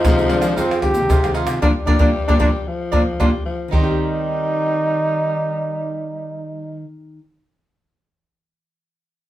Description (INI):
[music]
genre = samba and choro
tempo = 114 BPM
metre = 4/4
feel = straight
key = Eb major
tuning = A4 = 440 Hz
[part]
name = warm trombone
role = melody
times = 0.0-6.8 s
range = C4 to G4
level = -22 LUFS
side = equal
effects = none
[part]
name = growling tenor saxophone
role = second line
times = 0.0-6.8 s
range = F3 to G3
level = -26 LUFS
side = left 3 dB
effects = none
[part]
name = cavaquinho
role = accompaniment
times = 0.0-7.2 s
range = Eb4 to F5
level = -26 LUFS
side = right 3 dB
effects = none
[part]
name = nylon-string guitar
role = accompaniment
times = 0.0-7.3 s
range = F2 to G4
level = -26 LUFS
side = left 2 dB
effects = none
[part]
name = nylon-string guitar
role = bass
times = 0.0-6.8 s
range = Bb2 to F3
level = -24 LUFS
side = right 2 dB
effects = none
[part]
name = egg shaker, surdo, pandeiro and tamborim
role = percussion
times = 0.0-3.8 s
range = none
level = -19 LUFS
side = equal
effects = none
[sound]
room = wet studio reverb, RT60 0.6 s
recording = band playing live in one room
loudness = -16 LUFS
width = side -14 dB against mid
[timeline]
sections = 0.0-3.7 A section; 3.7-7.9 B section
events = band accent 1.6-3.7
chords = 0.0 Fm7; 1.6 Bb; 3.7 Eb6